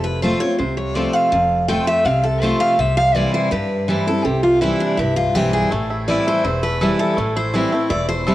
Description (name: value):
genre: bluegrass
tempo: 164 BPM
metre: 4/4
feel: straight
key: A minor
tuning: A4 = 439 Hz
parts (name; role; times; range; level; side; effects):
- picked steel-string acoustic guitar; melody; 0.0-8.3 s; D4 to G5; -19 LUFS; equal; cassette tape
- picked steel-string acoustic guitar; accompaniment; 0.0-8.3 s; E2 to F4; -19 LUFS; equal; cassette tape
- upright bass; bass; 0.0-8.3 s; E1 to G2; -25 LUFS; equal; none
- bluegrass banjo; melody; 5.7-8.3 s; A3 to A4; -26 LUFS; right 2 dB; cassette tape
room: light reverb, studio reverb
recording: home recording on cassette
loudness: -16 LUFS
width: side -15 dB against mid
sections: 0.0-8.3 A section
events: none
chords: 0.0 F; 2.8 C; 5.7 Am7